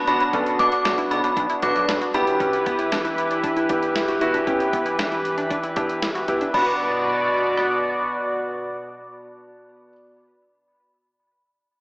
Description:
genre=synth-pop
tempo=116 BPM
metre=4/4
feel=straight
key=B minor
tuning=A4 = 439 Hz
part: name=chorused pulse-width pad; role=sustained chords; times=0.0-9.9 s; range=B2 to D5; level=-23 LUFS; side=equal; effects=none
part: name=analog pluck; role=arpeggios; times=0.0-10.0 s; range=B3 to B4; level=-29 LUFS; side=equal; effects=chorus, analog delay
part: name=synth chime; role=second line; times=0.1-2.2, 6.5-8.1 s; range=B5 to D6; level=-24 LUFS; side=equal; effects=ensemble chorus, phaser, analog delay
part: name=warm grand piano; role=accompaniment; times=0.1-9.9 s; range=B3 to A4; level=-26 LUFS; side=equal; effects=none
part: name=chorused synth bass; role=bass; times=0.1-2.2 s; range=A1 to B2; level=-29 LUFS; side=equal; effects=none
part: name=clean 12-bit digital drum machine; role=drums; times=0.1-7.7 s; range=crash cymbal, hi-hat, kick drum, rim click, snare drum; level=-30 LUFS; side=equal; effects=none
room=wet lush hall reverb, RT60 1.8 s, digital ambience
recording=dreamy mix soaked in reverb, AM radio sound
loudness=-19 LUFS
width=side -37 dB against mid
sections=0.0-6.5 A section; 6.5-10.7 B section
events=none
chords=0.0 Bm; 2.1 Em; 6.5 Bm

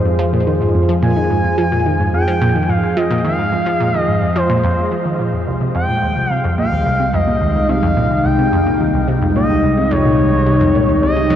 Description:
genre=ambient, sequencer-driven space music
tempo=108 BPM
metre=4/4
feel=straight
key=F minor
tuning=A4 = 438 Hz
part: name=expressive synth lead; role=melody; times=0.0-11.4 s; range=C5 to Ab5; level=-19 LUFS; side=equal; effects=chorus, ping-pong delay
part: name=evolving wavetable pad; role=sustained chords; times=0.0-11.4 s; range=C3 to Ab4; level=-18 LUFS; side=left 1 dB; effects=phaser, built-in reverb
part: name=analog pluck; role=riff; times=0.0-11.4 s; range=C2 to F3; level=-18 LUFS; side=equal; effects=chorus, ping-pong delay
part: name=analog drone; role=bass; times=0.0-11.4 s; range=C2 to F2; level=-23 LUFS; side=equal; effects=chorus
room=wet huge ambient reverb, RT60 8.8 s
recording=worn, warbling old tape, cassette tape, warbly pitch drift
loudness=-13 LUFS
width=side -10 dB against mid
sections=0.0-11.4 A section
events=none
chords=0.0 Fmadd9; 5.5 Cm

